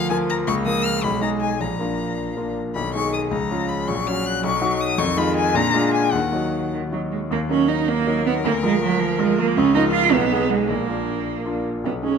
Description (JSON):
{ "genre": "quick classical-period movement for piano trio", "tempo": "106 BPM (dotted quarters)", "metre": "6/8", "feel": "straight", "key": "unclear", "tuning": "A4 = 440 Hz", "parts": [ { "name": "rich violin", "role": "melody", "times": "0.0-11.5 s", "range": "D4 to Gb6", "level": "-26 LUFS", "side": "left 7 dB", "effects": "none" }, { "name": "clear cello", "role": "second line", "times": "0.0-12.2 s", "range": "D3 to F4", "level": "-23 LUFS", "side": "right 8 dB", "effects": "none" }, { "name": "clear concert grand piano", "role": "accompaniment", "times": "0.0-12.2 s", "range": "Bb1 to Bb4", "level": "-22 LUFS", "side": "left 2 dB", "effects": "none" } ], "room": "moderate recital hall reverb, RT60 1.5 s", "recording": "close, detailed microphones", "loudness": "-19 LUFS", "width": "side -6 dB against mid", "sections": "0.0-7.3 A section; 7.3-12.2 A section", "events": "none", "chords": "0.5 Bbm/Db; 1.0 Abm/Cb; 1.6 Bb; 2.8 Abm/Cb; 3.3 Db; 3.9 Gb/Bb; 4.4 B; 5.0 Fm7b5; 5.6 Bb7; 6.1 Ebm; 8.4 Bb/D; 9.6 Bbm/Db; 10.1 Abm/Cb; 10.7 Bb" }